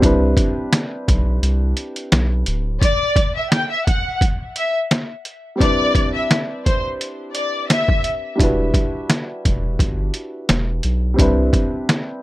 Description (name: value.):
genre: hip hop, boom-bap hip-hop.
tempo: 86 BPM.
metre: 4/4.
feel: swing 54% on 16ths.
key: unclear.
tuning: A4 = 438 Hz.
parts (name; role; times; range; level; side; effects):
warm upright piano; accompaniment; 0.0-12.2 s; G3 to B4; -23 LUFS; equal; high-pass filter, low-pass filter.
soft dub sub bass; bass; 0.0-2.8, 8.4-11.5 s; D1 to C2; -19 LUFS; equal; none.
trip hop sampler-style drum kit; drums; 0.0-12.1 s; hi-hat, kick drum, snare drum; -18 LUFS; equal; overdrive.
warm symphonic violin section; melody; 2.8-8.0 s; C5 to G5; -21 LUFS; left 2 dB; high-pass filter, low-pass filter, tape echo.
room: little or no reverb.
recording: none.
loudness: -16 LUFS.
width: side -17 dB against mid.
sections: 0.0-2.8 A section; 2.8-12.2 B section.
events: break 1.4-2.8.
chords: 0.0 Cmaj9; 2.8 N.C.; 5.6 Cmaj9; 8.4 Em9; 11.2 Cmaj9.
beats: | 0.02 0.72 1.42 2.12 | 2.81 3.51 4.21 4.91 | 5.61 6.30 7.00 7.70 | 8.40 9.09 9.79 10.49 | 11.19 11.88.